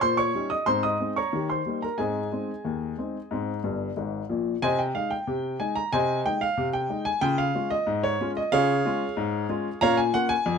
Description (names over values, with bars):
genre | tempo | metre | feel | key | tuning
ragtime piano | 92 BPM | 2/4 | straight | Ab major | A4 = 440 Hz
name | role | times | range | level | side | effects
warm upright piano | solo | 0.0-10.6 s | G1 to Eb6 | -24 LUFS | equal | none
room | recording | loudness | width
moderate club reverb, RT60 0.7 s | none | -24 LUFS | side -6 dB against mid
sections
0.0-4.6 A section; 4.6-10.6 B section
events
upright piano fill 3.6-4.6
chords
0.0 Eb7; 0.7 Ab; 1.3 Eb7; 2.0 Ab; 4.6 Ab/C; 7.2 Db; 9.8 Bbm